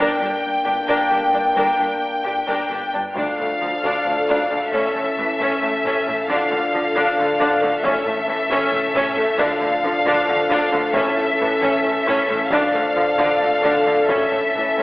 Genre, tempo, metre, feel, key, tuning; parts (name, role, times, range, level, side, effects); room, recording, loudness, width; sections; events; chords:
cinematic, epic orchestral film score; 269 BPM (eighths); 7/8; straight; D harmonic minor; A4 = 440 Hz
rich symphonic violin section; melody; 0.0-14.8 s; E5 to G5; -21 LUFS; left 1 dB
warm symphonic violin section; second line; 0.0-14.8 s; D4 to Bb4; -24 LUFS; left 1 dB
rich symphonic viola section; accompaniment; 0.0-14.8 s; E3 to D4; -23 LUFS; equal
mellow French horn section; sustained chords; 0.0-14.8 s; E3 to D4; -25 LUFS; equal
rich symphonic cello section; bass; 0.0-14.8 s; D2 to D3; -27 LUFS; equal
warm symphonic double bass section; bass; 0.0-14.8 s; G1 to D2; -38 LUFS; equal
taiko ensemble; drums; 3.2-14.8 s; -34 LUFS; equal
wet scoring stage reverb, RT60 1.6 s; heard from further back in the room, telephone sound; -17 LUFS; side -20 dB against mid
0.0-3.2 A section; 3.2-14.8 B section
build-up 0.0-3.2; drum fill 8.7-9.4
0.0 Gm; 3.2 Dm; 4.7 A; 6.3 Dm; 7.8 A; 9.4 Dm; 10.9 A; 12.5 Dm; 14.1 A